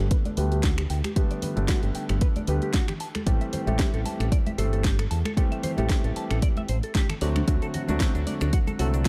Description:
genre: nu-disco, nu disco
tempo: 114 BPM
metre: 4/4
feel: swing 55% on 16ths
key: G major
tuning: A4 = 439 Hz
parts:
  - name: clear concert grand piano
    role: accompaniment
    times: 0.0-9.0 s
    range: D3 to A4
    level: -34 LUFS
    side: equal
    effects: sidechain pumping, low-pass filter, analog delay
  - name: clean electric guitar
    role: riff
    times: 0.0-9.1 s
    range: C4 to A5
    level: -38 LUFS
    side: equal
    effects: lush chorus, low-pass filter, analog delay
  - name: fingered electric bass with an envelope filter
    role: bass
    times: 0.0-9.1 s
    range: G1 to E2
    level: -28 LUFS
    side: equal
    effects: none
  - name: bongos, congas and cabasa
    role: percussion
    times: 0.0-9.1 s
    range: none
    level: -38 LUFS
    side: equal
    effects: none
  - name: electronic kick drum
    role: drums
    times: 0.1-9.1 s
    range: none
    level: -26 LUFS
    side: equal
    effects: overdrive, small room reverb
  - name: house drum kit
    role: drums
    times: 0.1-9.1 s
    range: finger snaps, hi-hat, snare drum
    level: -36 LUFS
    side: equal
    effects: overdrive, small room reverb
room: digital ambience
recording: dark, warm production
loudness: -25 LUFS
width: mono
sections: 0.0-9.1 A section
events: filter sweep on clean electric guitar 0.0-9.1; filter sweep on grand piano 0.0-9.1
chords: 0.0 Gadd9; 3.0 Am7; 7.2 D7

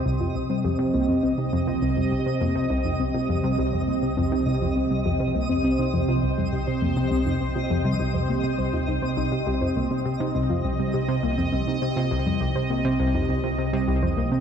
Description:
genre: ambient, sequencer-driven space music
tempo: 102 BPM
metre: 4/4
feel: straight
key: C minor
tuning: A4 = 441 Hz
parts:
  - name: sweeping resonant pad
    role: sustained chords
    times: 0.0-14.4 s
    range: C3 to Eb5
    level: -26 LUFS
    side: right 2 dB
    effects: chorus
  - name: analog drone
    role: bass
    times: 0.9-14.4 s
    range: C2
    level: -34 LUFS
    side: equal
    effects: chorus
  - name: twinkling granular texture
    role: texture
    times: 0.0-14.4 s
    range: Eb5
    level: -35 LUFS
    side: left 1 dB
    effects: built-in reverb
  - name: soft round pluck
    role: arpeggios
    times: 0.1-14.4 s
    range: G3 to C5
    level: -29 LUFS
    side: left 3 dB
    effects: chorus, auto-pan, ping-pong delay
  - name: analog pluck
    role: riff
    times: 0.1-14.4 s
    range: C2 to C3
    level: -26 LUFS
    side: equal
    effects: chorus, ping-pong delay
room: wet concert hall reverb, RT60 2.3 s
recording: none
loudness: -22 LUFS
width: side -8 dB against mid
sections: 0.0-14.4 A section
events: filter sweep on synth arpeggio sound 0.0-14.4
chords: 0.0 Cm

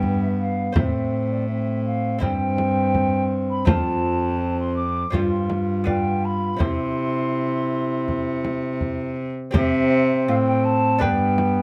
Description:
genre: classical, renaissance-style consort dance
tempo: 82 BPM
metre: 4/4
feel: straight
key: C major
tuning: A4 = 441 Hz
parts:
  - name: mellow hollow concert flute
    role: melody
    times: 0.0-11.6 s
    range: D5 to D6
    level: -29 LUFS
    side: equal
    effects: none
  - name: clear trombone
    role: accompaniment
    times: 0.0-11.6 s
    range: B3 to F4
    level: -27 LUFS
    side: equal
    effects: none
  - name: lute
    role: accompaniment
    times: 0.0-11.6 s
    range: F2 to D5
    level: -35 LUFS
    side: equal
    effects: none
  - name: rich cello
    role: bass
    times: 0.0-11.6 s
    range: F2 to C3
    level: -26 LUFS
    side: equal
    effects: none
  - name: frame drum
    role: percussion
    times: 0.0-11.6 s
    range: none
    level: -26 LUFS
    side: equal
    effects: none
room: light reverb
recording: close, detailed microphones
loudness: -22 LUFS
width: mono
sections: 0.0-9.6 A section; 9.6-11.6 A section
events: none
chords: 0.0 G; 0.8 Am; 2.2 C/G; 3.7 F; 5.1 G7sus4; 5.9 G7; 6.6 C; 11.0 G

